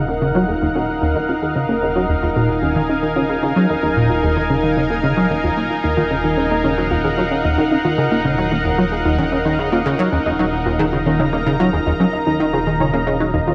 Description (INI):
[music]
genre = ambient, sequencer-driven space music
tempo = 112 BPM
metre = 4/4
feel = straight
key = Eb minor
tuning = A4 = 440 Hz
[part]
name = lush unison pad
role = sustained chords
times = 0.0-13.5 s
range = Eb4 to Bb5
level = -22 LUFS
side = equal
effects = chorus
[part]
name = plucky analog bass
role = riff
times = 0.0-13.5 s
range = Eb2 to Bb3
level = -22 LUFS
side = equal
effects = ensemble chorus, tape echo
[part]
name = fat analog bass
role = bass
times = 0.0-13.5 s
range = Eb1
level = -30 LUFS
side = equal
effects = none
[part]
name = soft round pluck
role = arpeggios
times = 0.1-13.5 s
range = Eb3 to Eb5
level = -26 LUFS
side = equal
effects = chorus, tape echo
[sound]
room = wet plate reverb, RT60 2.4 s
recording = echo-heavy mix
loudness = -18 LUFS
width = mono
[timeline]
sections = 0.0-13.5 A section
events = none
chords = 0.0 Ebm